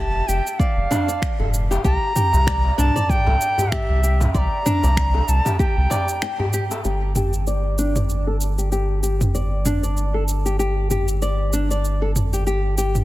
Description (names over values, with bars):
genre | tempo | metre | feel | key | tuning
organic downtempo | 96 BPM | 4/4 | swing 56% on 16ths | G dorian | A4 = 440 Hz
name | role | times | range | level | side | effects
bright reedy bansuri | melody | 0.0-6.5 s | E5 to C6 | -24 LUFS | right 1 dB | vintage 12-bit sampler grit, tape echo
flamenco guitar | arpeggios | 0.0-12.9 s | D4 to G5 | -25 LUFS | left 1 dB | low-pass filter, digital delay
warm sub bass | bass | 0.0-13.0 s | F1 to C2 | -20 LUFS | equal | tube saturation
darbuka | percussion | 0.2-6.8 s | none | -29 LUFS | equal | none
deep house drum kit | drums | 0.3-13.0 s | finger snaps, shaker, toms | -26 LUFS | right 1 dB | soft clipping on snare
electronic kick drum | drums | 0.6-5.7 s | none | -23 LUFS | equal | none
room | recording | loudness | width
light reverb | dense, heavily limited modern master | -18 LUFS | side -16 dB against mid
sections
0.0-6.8 A section; 6.8-13.0 B section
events
break 6.2-6.8; filter sweep on nylon-string guitar 6.8-13.0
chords
0.0 N.C.; 1.8 C5; 6.8 G5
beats
0.60 1.22 | 1.85 2.47 3.10 3.72 | 4.35 4.97 5.60 6.22 | 6.85 7.47 8.10 8.72 | 9.35 9.97 10.60 11.22 | 11.85 12.47